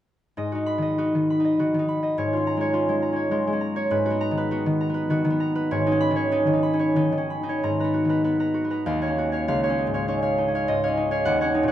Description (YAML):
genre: classical, solo harp piece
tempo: 86-106 BPM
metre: 3/4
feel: rubato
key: G# dorian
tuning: A4 = 440 Hz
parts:
  - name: concert harp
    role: solo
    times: 0.4-11.7 s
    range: C#2 to B5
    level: -21 LUFS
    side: equal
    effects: none
room: wet stone room reverb, RT60 1.2 s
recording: dark, warm production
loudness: -21 LUFS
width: side -12 dB against mid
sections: 0.4-7.6 A section; 7.6-11.7 B section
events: none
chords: 0.4 G#m7; 2.2 A#m7/G#; 3.9 G#m9; 5.7 B69/G#; 7.6 G#m9; 8.9 D#m9; 9.5 C#add9